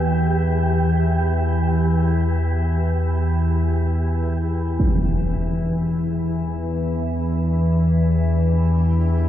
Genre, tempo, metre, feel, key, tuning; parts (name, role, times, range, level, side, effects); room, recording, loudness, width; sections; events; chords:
dark ambient drone; free time; E minor; A4 = 440 Hz
carillon bells; arpeggios; 0.0-0.7 s; barely audible
organ-like drone; drone; 0.0-9.3 s; E2 to E3; -18 LUFS; equal; ensemble chorus, built-in reverb, phaser
wind-like tuned noise texture; texture; 0.0-4.8 s; G4; -29 LUFS; right 3 dB; built-in reverb, shimmer reverb
granular cloud pad; sustained chords; 6.6-9.3 s; E3 to B4; -39 LUFS; left 1 dB; built-in reverb
impact; percussion; 4.8-5.0 s; -23 LUFS; equal; low-pass filter on sfx
moderate huge ambient reverb, RT60 8.1 s; -18 LUFS; side -11 dB against mid
0.0-4.8 A section; 4.8-9.3 B section
0.0 A5/E; 4.8 Em